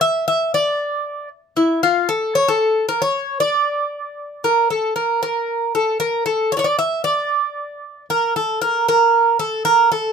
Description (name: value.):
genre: greek folk.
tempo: 230 BPM (eighths).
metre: 7/8.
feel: straight.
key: D harmonic minor.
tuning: A4 = 439 Hz.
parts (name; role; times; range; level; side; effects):
Greek bouzouki; solo; 0.0-10.1 s; E4 to E5; -16 LUFS; right 1 dB; none.
room: light reverb.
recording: close, detailed microphones.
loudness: -16 LUFS.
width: side -6 dB against mid.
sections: 0.0-5.2 A section; 5.2-10.1 B section.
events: none.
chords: none.